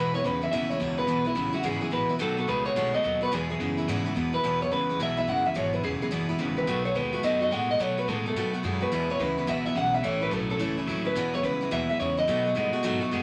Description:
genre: rock.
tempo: 214 BPM.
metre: 4/4.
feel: swing 64% on 8ths.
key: E major.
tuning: A4 = 440 Hz.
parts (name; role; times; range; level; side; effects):
electric guitar through a small old amp; melody; 0.0-13.2 s; E4 to F#5; -30 LUFS; equal; harmonic tremolo.
picked steel-string acoustic guitar; accompaniment; 0.0-13.2 s; E2 to F#4; -34 LUFS; equal; none.
electric guitar at the edge of break-up; riff; 0.0-13.2 s; E2 to G#3; -33 LUFS; equal; none.
upright bass; bass; 0.0-13.2 s; E1 to B2; -39 LUFS; equal; none.
room: moderate studio reverb, RT60 0.5 s.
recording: none.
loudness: -27 LUFS.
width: mono.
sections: 0.0-4.4 A section; 4.4-13.2 B section.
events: none.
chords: 0.0 E; 2.2 B7; 3.3 E; 6.7 B7; 8.9 E; 10.0 A; 11.2 E; 12.3 B7.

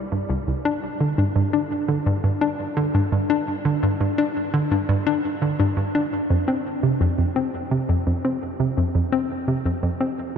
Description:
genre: ambient.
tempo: 85 BPM.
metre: 4/4.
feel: straight.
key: unclear.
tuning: A4 = 444 Hz.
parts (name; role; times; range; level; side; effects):
hollow square pluck; solo; 0.1-10.1 s; C2 to D4; -20 LUFS; equal; chorus, ping-pong delay.
room: wet huge ambient reverb, RT60 8.0 s.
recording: dark, warm production.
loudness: -20 LUFS.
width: side -7 dB against mid.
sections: 0.0-6.3 A section; 6.3-10.4 B section.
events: none.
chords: none.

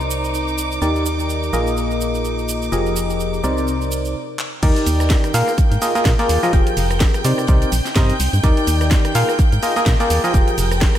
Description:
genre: piano house.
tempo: 126 BPM.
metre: 4/4.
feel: swing 57% on 16ths.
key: Eb major.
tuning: A4 = 440 Hz.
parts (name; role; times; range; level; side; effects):
rich chamber violin section; sustained chords; 0.0-11.0 s; Eb4 to G6; -27 LUFS; right 1 dB; sidechain pumping, low-pass filter.
barking FM electric piano; riff; 0.0-11.0 s; C3 to G5; -20 LUFS; left 1 dB; chorus, sidechain pumping, analog delay.
organ-like FM bass; bass; 0.0-10.9 s; F1 to C3; -20 LUFS; equal; sidechain pumping.
house drum kit; drums; 0.0-11.0 s; crash cymbal, handclaps, hi-hat, rim click, shaker, snare drum; -26 LUFS; right 1 dB; none.
electronic kick drum; drums; 4.6-10.9 s; none; -15 LUFS; equal; none.
open jazz drum kit; drums; 4.6-11.0 s; hi-hat, snare drum; -37 LUFS; right 3 dB; none.
room: moderate plate reverb, RT60 2.1 s.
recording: dreamy mix soaked in reverb.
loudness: -15 LUFS.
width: side -11 dB against mid.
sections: 0.0-4.6 A section; 4.6-11.0 B section.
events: stop 4.2-4.6; drum fill 4.4; drop 4.6-11.0.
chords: 0.0 Cm9; 0.8 Ebmaj7; 1.5 Bb7sus4; 2.7 Fm11; 3.4 Cm9; 4.6 Ebmaj7; 5.3 Bb7sus4; 6.5 Fmadd9; 7.2 Cm9; 8.4 Ebmaj7; 9.2 Bb7sus4; 10.3 Fmadd9.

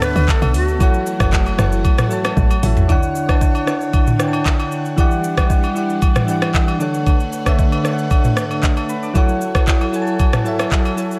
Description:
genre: amapiano.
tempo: 115 BPM.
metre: 4/4.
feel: straight.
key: D major.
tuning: A4 = 444 Hz.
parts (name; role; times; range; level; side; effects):
breathy mellow jazz flute; melody; 0.0-1.0 s; F#4 to B4; -26 LUFS; equal; delay.
soft electric-piano-like synth keys; accompaniment; 0.0-11.2 s; D3 to D6; -23 LUFS; equal; chorus, tremolo.
string machine, violins; sustained chords; 0.0-11.2 s; D3 to F#5; -28 LUFS; equal; ensemble chorus.
woody log drum bass; bass; 0.0-2.9 s; F#1 to D2; -20 LUFS; equal; none.
afro-pop drum kit; drums; 0.0-11.2 s; handclaps, hi-hat, kick drum, rim click, shaker, toms; -19 LUFS; equal; none.
agogo bells and woodblock; percussion; 0.2-11.0 s; none; -32 LUFS; equal; none.
room: light reverb, digital ambience.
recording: none.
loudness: -17 LUFS.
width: mono.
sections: 0.0-2.9 A section; 2.9-11.2 B section.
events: drop 0.0-2.9; drum fill 2.4-2.9.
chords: 0.0 Bm7; 0.8 F#m7; 2.9 Dmaj7; 5.0 Em9; 6.8 Bm7/D; 9.2 F#m7.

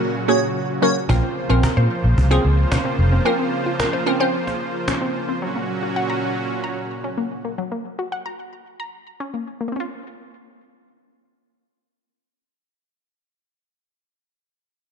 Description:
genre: dance-pop.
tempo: 111 BPM.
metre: 4/4.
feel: straight.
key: Bb minor.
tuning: A4 = 440 Hz.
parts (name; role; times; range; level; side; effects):
glassy wavetable pluck; accompaniment; 0.0-4.9 s; Gb3 to C5; -22 LUFS; right 1 dB; chorus.
soft supersaw; sustained chords; 0.0-7.6 s; Bb2 to C5; -25 LUFS; right 1 dB; none.
airy dreamy lead; melody; 0.3-0.9 s; Db5; -26 LUFS; right 3 dB; chorus, digital delay.
wide unison pluck; arpeggios; 1.1-14.0 s; Gb3 to Bb5; -28 LUFS; left 2 dB; digital delay.
vintage muted fingered electric bass; bass; 1.1-3.2 s; F1 to Bb2; -16 LUFS; equal; none.
cajon; drums; 1.1-5.0 s; none; -25 LUFS; equal; none.
room: light reverb.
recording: dark, warm production, nothing above 11.0 kHz.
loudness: -19 LUFS.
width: side -7 dB against mid.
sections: 0.0-1.1 A section; 1.1-9.7 B section; 9.7-14.1 C section.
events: break 0.0-1.1; drop 0.0-1.1.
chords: 0.0 Gb; 1.1 Bbmadd9; 5.4 Gb; 9.7 Bbmadd9.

